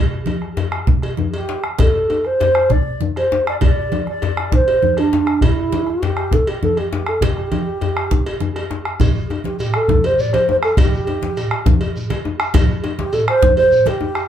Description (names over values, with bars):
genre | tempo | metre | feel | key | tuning
west african traditional, West African drum ensemble | 134 BPM (dotted quarters) | 12/8 | straight | unclear | A4 = 440 Hz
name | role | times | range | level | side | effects
congas | percussion | 0.3-14.0 s | none | -22 LUFS | right 3 dB | none
cowbell | percussion | 0.3-14.0 s | none | -28 LUFS | left 1 dB | none
djembe | percussion | 0.3-14.2 s | none | -23 LUFS | left 5 dB | none
bombo | percussion | 0.4-14.3 s | none | -19 LUFS | left 1 dB | none
mellow hollow wooden-headed alto flute | melody | 1.3-14.3 s | D4 to D5 | -17 LUFS | right 2 dB | none
shekere | percussion | 9.0-14.2 s | none | -26 LUFS | right 2 dB | none
room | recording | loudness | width
wet small room ambience, RT60 0.5 s | heard from further back in the room | -15 LUFS | side -10 dB against mid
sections
0.0-9.0 A section; 9.0-14.3 B section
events
speeding up 0.0-14.3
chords
none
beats
0.42 0.88 1.34 | 1.79 2.25 2.71 3.16 | 3.61 4.07 4.52 4.97 | 5.42 5.87 6.32 6.77 | 7.22 7.67 8.12 8.56 | 9.01 9.45 9.89 10.34 | 10.78 11.22 11.66 12.10 | 12.54 12.98 13.42 13.86